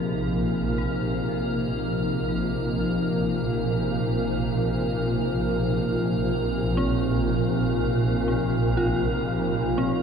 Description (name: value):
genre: dark ambient drone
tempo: free time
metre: none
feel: none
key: unclear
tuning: A4 = 440 Hz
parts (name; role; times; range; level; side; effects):
- sweeping resonant pad; sustained chords; 0.0-10.0 s; C3 to Eb4; -26 LUFS; left 1 dB; chorus
- dark detuned synth bell; arpeggios; 0.0-10.0 s; C4 to Bb4; -32 LUFS; equal; chorus, ping-pong delay
- swarming drone; drone; 0.0-10.0 s; Bb1 to Bb2; -27 LUFS; right 1 dB; built-in reverb
- icy glass pad; texture; 0.0-10.0 s; Bb4; -31 LUFS; right 2 dB; chorus, built-in reverb
room: wet huge ambient reverb, RT60 8.5 s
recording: dreamy mix soaked in reverb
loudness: -22 LUFS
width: side -6 dB against mid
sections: 0.0-10.0 A section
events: filter sweep on synth drone 0.0-10.0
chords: 0.0 Bbsus2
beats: free time